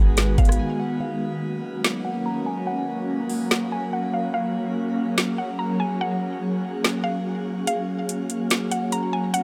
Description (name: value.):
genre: hip hop, atmospheric cloud-rap.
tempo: 144 BPM.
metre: 4/4.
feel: half-time.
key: F# major.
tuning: A4 = 438 Hz.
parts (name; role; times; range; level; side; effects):
mallet-like synth pluck; melody; 0.0-9.4 s; E#5 to A#5; -33 LUFS; equal; chorus, low-pass filter, tape echo.
shimmering ambient pad; sustained chords; 0.0-9.4 s; D#3 to G#4; -28 LUFS; equal; chorus, built-in reverb, sidechain pumping, low-pass filter.
glassy digital keys; arpeggios; 0.0-1.0 s; B3 to G#5; -38 LUFS; equal; chorus, low-pass filter, tape echo.
clean 808-style bass; bass; 0.0-0.6 s; G#1; -23 LUFS; equal; none.
smooth R&B drum kit; drums; 0.2-9.4 s; hi-hat, kick drum, rim click, snare drum; -24 LUFS; equal; none.
room: moderate shimmer reverb, RT60 6.5 s.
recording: none.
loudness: -25 LUFS.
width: mono.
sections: 0.0-1.0 A section; 1.0-7.7 B section; 7.7-9.4 C section.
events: break 0.6-1.0; filter sweep 1.0-7.7; kick muted 7.7-9.4.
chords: 0.0 G#m7; 1.0 F#maj7.